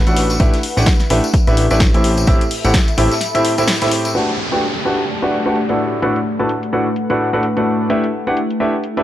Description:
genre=piano house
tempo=128 BPM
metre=4/4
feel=swing 58% on 16ths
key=unclear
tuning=A4 = 441 Hz
part: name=fat analog bass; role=bass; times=0.0-3.1 s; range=A1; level=-17 LUFS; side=equal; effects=sidechain pumping
part: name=warbly tape-like pad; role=texture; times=0.0-9.0 s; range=A3 to B5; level=-23 LUFS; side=left 1 dB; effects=chorus, built-in reverb, sidechain pumping
part: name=clear concert grand piano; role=riff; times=0.1-9.0 s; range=A2 to A5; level=-17 LUFS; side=equal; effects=sidechain pumping, low-pass filter, analog delay
part: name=house drum kit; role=drums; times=0.1-9.0 s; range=hi-hat, snare drum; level=-22 LUFS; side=left 1 dB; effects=low-pass filter on hats, low-pass filter on snare
part: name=tambourine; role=percussion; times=0.1-4.1 s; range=none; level=-28 LUFS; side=left 4 dB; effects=none
part: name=loose indie drum kit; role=drums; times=0.2-4.1 s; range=hi-hat, snare drum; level=-29 LUFS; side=left 2 dB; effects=none
part: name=electronic kick drum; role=drums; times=0.4-2.9 s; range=none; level=-14 LUFS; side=equal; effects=overdrive
part: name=downlifter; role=sound effects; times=4.1-7.9 s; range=none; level=-26 LUFS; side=equal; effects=none
room=small room ambience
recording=dry, gritty hardware recording, cassette tape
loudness=-14 LUFS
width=side -12 dB against mid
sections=0.0-4.1 A section; 4.1-9.0 B section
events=band accent 3.7; filter sweep on grand piano 4.1-9.0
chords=0.4 Em7/A; 2.0 Am7; 4.1 Gmaj7/A; 5.8 Bm7/A; 7.9 Em7/A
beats=| 0.40 0.87 1.34 1.80 | 2.27 2.74 3.21 3.68 | 4.15 4.62 5.09 5.55 | 6.02 6.49 6.96 7.43 | 7.90 8.37 8.84

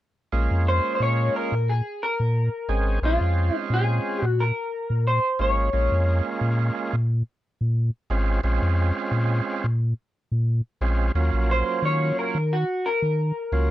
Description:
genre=straight-eighth soul blues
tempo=89 BPM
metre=4/4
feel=swing 54% on 16ths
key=Bb minor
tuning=A4 = 438 Hz
part: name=overdriven tonewheel organ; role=accompaniment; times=0.3-13.7 s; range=Gb3 to Ab4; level=-27 LUFS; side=right 4 dB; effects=slow rotary speaker
part: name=pure sine sub bass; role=bass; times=0.3-13.7 s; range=Ab1 to Eb3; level=-22 LUFS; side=equal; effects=none
part: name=electric guitar through a small old amp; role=melody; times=0.7-6.4, 11.5-13.7 s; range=F4 to Db5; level=-25 LUFS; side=left 1 dB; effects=lush chorus
room=little or no reverb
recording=none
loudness=-21 LUFS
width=side -14 dB against mid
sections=0.3-13.7 A section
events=none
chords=0.3 Bbm7; 11.1 Ebm7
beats=| 0.33 1.00 1.68 2.35 | 3.03 3.70 4.38 5.06 | 5.73 6.41 7.08 7.76 | 8.44 9.12 9.79 10.47 | 11.15 11.83 12.50 13.18

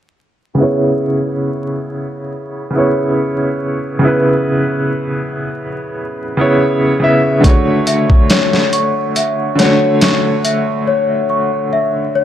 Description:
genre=trip hop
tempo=70 BPM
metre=4/4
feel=straight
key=C# phrygian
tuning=A4 = 440 Hz
part: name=clear upright piano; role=accompaniment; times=0.5-12.2 s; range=C#3 to E5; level=-14 LUFS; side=equal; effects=tremolo, low-pass filter, tape echo
part: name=large celesta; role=arpeggios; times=7.4-12.2 s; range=C#5 to C#6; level=-16 LUFS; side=left 2 dB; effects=tape echo
part: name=boom bap sampler-style drum kit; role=drums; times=7.4-10.7 s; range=hi-hat, kick drum, snare drum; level=-13 LUFS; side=equal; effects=none
room=light reverb, small room ambience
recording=vinyl crackle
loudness=-12 LUFS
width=side -10 dB against mid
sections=0.6-12.2 A section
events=filter sweep on upright piano 0.6-12.2; break 10.9-12.2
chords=0.6 C#m7; 7.4 Dmaj7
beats=| 0.59 1.45 2.30 3.16 | 4.02 4.87 5.73 6.59 | 7.45 8.30 9.16 10.02 | 10.87 11.73

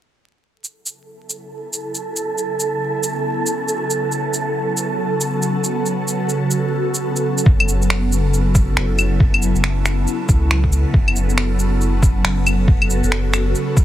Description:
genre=future garage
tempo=138 BPM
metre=4/4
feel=swing 62% on 16ths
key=F# minor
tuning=A4 = 440 Hz
part: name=ethereal airy pad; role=sustained chords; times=1.8-13.8 s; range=C#3 to A4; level=-21 LUFS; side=equal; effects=ensemble chorus, built-in reverb, phaser, sidechain pumping
part: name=wind-like tuned noise texture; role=texture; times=1.3-7.5 s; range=A4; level=-24 LUFS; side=right 3 dB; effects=built-in reverb
part: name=electronic shaker, claves and finger snaps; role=drums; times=0.6-13.8 s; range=none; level=-22 LUFS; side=equal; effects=soft clipping on snare
part: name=warm sub bass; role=bass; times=7.5-13.5 s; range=F#1 to C#2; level=-18 LUFS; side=equal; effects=tube saturation, sidechain pumping
part: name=electronic kick drum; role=drums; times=7.5-13.8 s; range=none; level=-14 LUFS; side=equal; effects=none
room=little or no reverb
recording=dense, heavily limited modern master, vinyl crackle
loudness=-16 LUFS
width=side -12 dB against mid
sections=0.5-7.5 A section; 7.5-13.8 B section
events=fade-in on ambient pad 0.5-7.5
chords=0.5 F#m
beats=| 0.51 0.94 1.38 1.81 | 2.25 2.68 3.12 3.55 | 3.99 4.42 4.86 5.29 | 5.73 6.16 6.60 7.03 | 7.46 7.90 8.34 8.77 | 9.21 9.64 10.07 10.51 | 10.94 11.38 11.81 12.25 | 12.68 13.12 13.55

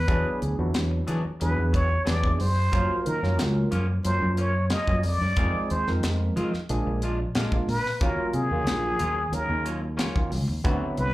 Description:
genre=electric jazz fusion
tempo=91 BPM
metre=4/4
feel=straight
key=unclear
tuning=A4 = 440 Hz
part: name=trumpet with plunger mute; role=melody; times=0.0-11.1 s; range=G#4 to Eb5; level=-28 LUFS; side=equal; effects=slapback echo
part: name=fingered electric bass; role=bass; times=0.0-11.1 s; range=Bb1 to F3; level=-26 LUFS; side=equal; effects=none
part: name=barky tine electric piano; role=accompaniment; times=0.1-11.1 s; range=D3 to Db5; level=-31 LUFS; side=right 2 dB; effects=overdrive, phaser, slapback echo
part: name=semi-hollow electric guitar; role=stabs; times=0.1-10.9 s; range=Eb3 to G#4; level=-34 LUFS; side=left 1 dB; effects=lush chorus, slapback echo
part: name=crisp fusion drum kit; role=drums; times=0.1-11.1 s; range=hi-hat, kick drum, snare drum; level=-29 LUFS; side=equal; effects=none
room=light reverb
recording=live gig heard through the venue's PA, club ambience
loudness=-23 LUFS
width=side -17 dB against mid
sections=0.0-11.1 A section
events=muted trumpet solo 0.0-11.1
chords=0.1 E9; 2.7 Gbmaj7; 5.4 Fm7; 6.7 Bb7; 8.0 Ebm9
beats=| 0.08 0.74 1.41 2.07 | 2.73 3.39 4.05 4.71 | 5.37 6.03 6.69 7.35 | 8.01 8.67 9.33 9.99 | 10.65

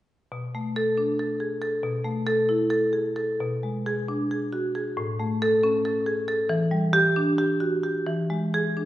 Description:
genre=classical, contemporary piece for solo marimba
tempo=272 BPM (eighths)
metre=7/8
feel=rubato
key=B dorian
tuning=A4 = 440 Hz
part: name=marimba with medium hard mallets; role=solo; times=0.3-8.9 s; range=A2 to A4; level=-23 LUFS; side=equal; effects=none
room=wet recital hall reverb, RT60 1.6 s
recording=recorded in a church or concert hall, nothing above 10.6 kHz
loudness=-22 LUFS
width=side -14 dB against mid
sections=0.3-3.4 A section; 3.4-8.9 B section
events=none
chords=0.3 Bm7; 1.8 B7sus4; 3.4 Bm6; 5.0 A; 6.5 Em7; 8.1 E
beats=| 0.32 0.55 0.76 0.98 1.19 1.41 1.62 | 1.84 2.06 2.29 2.50 2.72 2.95 3.18 | 3.41 3.64 3.87 4.09 4.32 4.53 4.75 | 4.97 5.20 5.42 5.63 5.85 6.07 6.28 | 6.50 6.72 6.94 7.16 7.38 7.61 7.84 | 8.07 8.31 8.55 8.78

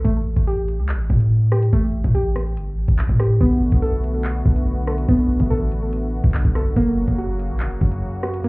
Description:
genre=hip hop, drill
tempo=143 BPM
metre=4/4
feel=half-time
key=B minor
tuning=A4 = 441 Hz
part: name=soft round pluck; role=arpeggios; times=0.0-8.5 s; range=A3 to A4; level=-23 LUFS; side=right 1 dB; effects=chorus, digital delay
part: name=long sustained 808-style bass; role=bass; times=0.0-8.4 s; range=F#1 to B2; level=-20 LUFS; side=equal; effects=none
part: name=drill drum kit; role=drums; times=0.1-8.5 s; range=handclaps, hi-hat, kick drum, rim click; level=-20 LUFS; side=equal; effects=overdrive
part: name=warm analog pad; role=sustained chords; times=3.4-8.5 s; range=C#3 to F#4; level=-27 LUFS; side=left 1 dB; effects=chorus
room=little or no reverb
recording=heard muffled through a wall, club reverb, EQ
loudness=-17 LUFS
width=side -26 dB against mid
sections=0.0-8.5 A section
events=none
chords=0.1 A7(no3); 3.4 Bm7; 6.8 F#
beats=| 0.05 0.47 0.89 1.31 | 1.73 2.15 2.57 2.99 | 3.41 3.83 4.25 4.67 | 5.08 5.50 5.92 6.34 | 6.76 7.18 7.60 8.02 | 8.44

